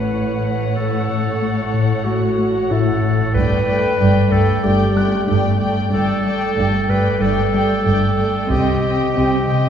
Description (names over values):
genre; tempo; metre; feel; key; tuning
cinematic, suspense film score; 93 BPM; 4/4; straight; unclear; A4 = 440 Hz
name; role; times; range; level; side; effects
muted studio violin section; melody; 0.0-9.7 s; F#5 to G5; -26 LUFS; left 3 dB; none
bright clarinet; second line; 0.0-9.7 s; F#4 to B4; -21 LUFS; equal; none
muted studio violin section; second line; 0.0-9.7 s; C#5 to Eb5; -28 LUFS; left 2 dB; none
muted studio viola section; accompaniment; 0.0-9.7 s; A3 to C4; -26 LUFS; right 2 dB; none
muted studio cello section; bass; 0.0-9.7 s; G2 to C3; -24 LUFS; right 2 dB; none
muted symphonic double bass section; bass; 0.0-9.7 s; G1 to C2; -23 LUFS; right 2 dB; none
felt-muted upright piano; texture; 0.0-9.7 s; E4 to F#6; -29 LUFS; left 3 dB; none
smooth synth bass; riff; 0.1-9.7 s; G2 to C4; -21 LUFS; left 2 dB; none
solo taiko drums; drums; 3.3-4.6, 8.5-9.7 s; none; -26 LUFS; right 1 dB; none
room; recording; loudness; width
wet scoring stage reverb, RT60 1.7 s; heard from further back in the room; -15 LUFS; side -8 dB against mid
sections
0.0-9.7 A section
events
none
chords
0.0 A6; 3.3 Gsus2; 8.5 Cm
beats
0.12 | 0.77 1.41 2.06 2.70 | 3.35 3.99 4.64 5.28 | 5.93 6.57 7.22 7.86 | 8.51 9.15